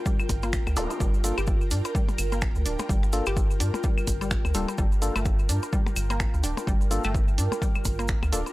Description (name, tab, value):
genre	minimal techno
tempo	127 BPM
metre	4/4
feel	swing 58% on 16ths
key	G minor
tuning	A4 = 441 Hz
part	ethereal airy pad	texture	0.0-8.5 s	F4 to G5	-35 LUFS	equal	ensemble chorus, built-in reverb, phaser, sidechain pumping
part	resonant blip pluck	riff	0.1-8.4 s	G3 to G4	-35 LUFS	left 1 dB	chorus, sidechain pumping, analog delay
part	electronic kick drum	drums	0.1-8.2 s	none	-26 LUFS	equal	none
part	percussion blips and claves	percussion	0.1-8.5 s	none	-34 LUFS	left 4 dB	tape echo
part	tube shaker	percussion	0.1-8.5 s	none	-38 LUFS	right 2 dB	none
part	rubbery square bass	bass	0.3-8.4 s	D1 to G2	-27 LUFS	equal	sidechain pumping
part	punchy analog drum machine	drums	0.3-8.4 s	finger snaps, hi-hat	-33 LUFS	right 1 dB	none
part	percussive organ stab	stabs	0.8-8.4 s	Bb3 to A4	-33 LUFS	left 2 dB	chorus, tape echo
part	zap	sound effects	0.8-0.9 s	none	-35 LUFS	equal	none
room	little or no reverb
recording	dry, gritty hardware recording, transformer saturation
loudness	-23 LUFS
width	side -18 dB against mid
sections	0.0-8.5 A section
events	none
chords	0.0 Gm7